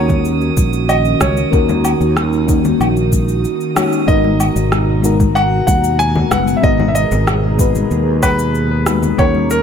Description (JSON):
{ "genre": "sunset chillout", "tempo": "94 BPM", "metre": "4/4", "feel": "straight", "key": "G# minor", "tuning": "A4 = 440 Hz", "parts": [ { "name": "warm concert grand piano", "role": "melody", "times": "0.0-9.6 s", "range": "A#4 to G#5", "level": "-19 LUFS", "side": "right 2 dB", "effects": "ping-pong delay" }, { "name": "mellow FM electric piano", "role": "accompaniment", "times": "0.0-9.6 s", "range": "G#3 to C#5", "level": "-19 LUFS", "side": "moving between left 8 dB and right 3 dB", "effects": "chorus, phaser, auto-pan, ping-pong delay" }, { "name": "airy breathy pad", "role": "sustained chords", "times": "0.0-9.6 s", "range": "B2 to A#5", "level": "-22 LUFS", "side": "right 2 dB", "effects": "chorus" }, { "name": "fretless electric bass", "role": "bass", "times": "0.0-9.6 s", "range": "F#1 to D#2", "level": "-17 LUFS", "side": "equal", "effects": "none" }, { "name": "drifting glass-harmonics texture", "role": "texture", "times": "0.0-4.1 s", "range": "D#6", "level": "-29 LUFS", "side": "right 8 dB", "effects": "chorus, built-in reverb" }, { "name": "electronic cabasa, woodblock and rim click", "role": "drums", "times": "0.1-9.6 s", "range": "none", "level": "-21 LUFS", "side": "left 1 dB", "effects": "none" }, { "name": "electronic kick drum", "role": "drums", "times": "0.1-9.3 s", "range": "none", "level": "-16 LUFS", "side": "equal", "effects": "none" }, { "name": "congas", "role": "percussion", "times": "0.1-9.5 s", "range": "none", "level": "-25 LUFS", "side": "left 5 dB", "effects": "none" } ], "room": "light reverb", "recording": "none", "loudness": "-12 LUFS", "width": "side -7 dB against mid", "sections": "0.0-4.1 A section; 4.1-9.6 B section", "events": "band accent 3.8-4.1", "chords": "0.0 D#m7; 4.1 G#m9" }